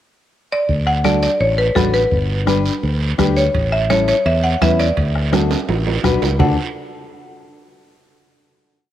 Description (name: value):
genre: latin, cumbia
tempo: 168 BPM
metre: 4/4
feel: straight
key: D major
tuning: A4 = 440 Hz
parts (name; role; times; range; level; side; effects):
- buzzing marimba with hard mallets; melody; 0.5-6.6 s; A4 to F#5; -19 LUFS; equal; cassette tape
- fingered electric bass; bass; 0.7-6.6 s; G1 to E2; -19 LUFS; equal; none
- bombo; percussion; 0.7-6.5 s; none; -23 LUFS; left 2 dB; none
- congas; percussion; 0.7-6.5 s; none; -22 LUFS; right 7 dB; none
- guiro; percussion; 0.7-6.5 s; none; -29 LUFS; right 8 dB; none
- nylon-string guitar; accompaniment; 1.0-6.6 s; C#4 to B4; -22 LUFS; left 7 dB; cassette tape
- timbales; percussion; 3.5-6.5 s; none; -26 LUFS; right 8 dB; none
room: light reverb, studio reverb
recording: home recording on cassette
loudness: -14 LUFS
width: side -12 dB against mid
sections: 0.0-0.7 pickup bar; 0.7-6.4 A section; 6.4-7.8 final chord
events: drum fill 5.3-6.4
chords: 0.0 N.C.; 0.7 D; 2.1 G; 3.5 A; 5.0 D